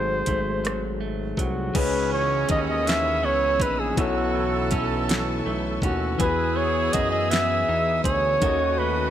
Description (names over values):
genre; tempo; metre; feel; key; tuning
slow six-eight R&B; 54 BPM (dotted quarters); 6/8; straight; C# minor; A4 = 439 Hz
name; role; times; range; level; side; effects
breathy flugelhorn; melody; 0.0-9.1 s; F#4 to E5; -24 LUFS; right 1 dB; slapback echo
clean electric guitar; second line; 0.0-9.1 s; G#2 to G#4; -32 LUFS; right 8 dB; none
overdriven tine electric piano; accompaniment; 0.0-9.1 s; B2 to D#5; -29 LUFS; left 8 dB; none
fat analog bass; bass; 0.0-9.1 s; G#1 to F#2; -29 LUFS; equal; none
smooth R&B drum kit; drums; 0.3-8.6 s; crash cymbal, hi-hat, kick drum, rim click, snare drum; -27 LUFS; equal; none
warm studio string section; sustained chords; 1.7-9.1 s; A4 to E6; -34 LUFS; left 1 dB; none
warm horn section; stabs; 1.7-9.1 s; B2 to A4; -32 LUFS; right 5 dB; none
room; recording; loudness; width
light reverb, digital ambience; none; -21 LUFS; side -10 dB against mid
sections
0.0-1.8 A section; 1.8-9.1 B section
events
none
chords
0.0 G#7b9; 1.8 C#m9; 4.0 B9sus4; 6.2 Emaj7; 8.4 D#m7b5